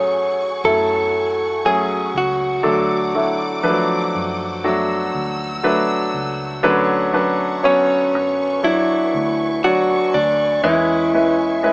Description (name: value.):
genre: pop ballad.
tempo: 60 BPM.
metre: 4/4.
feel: straight.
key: F# minor.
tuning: A4 = 441 Hz.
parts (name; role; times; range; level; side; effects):
direct-recorded clean electric guitar; melody; 0.0-11.7 s; C#4 to C#5; -18 LUFS; equal; none.
clear concert grand piano; accompaniment; 0.0-11.7 s; D3 to G#5; -18 LUFS; equal; none.
warm studio string section; sustained chords; 0.0-11.7 s; F#4 to E6; -28 LUFS; equal; none.
vintage muted fingered electric bass; bass; 0.0-11.7 s; C#2 to G#2; -31 LUFS; equal; none.
room: moderate studio reverb, RT60 0.8 s.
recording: band playing live in one room, small speaker sound.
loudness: -15 LUFS.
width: side -28 dB against mid.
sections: 0.0-11.7 A section.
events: none.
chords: 0.0 F#madd9; 2.6 D; 6.6 Bmadd9/D; 10.6 C#m7/E.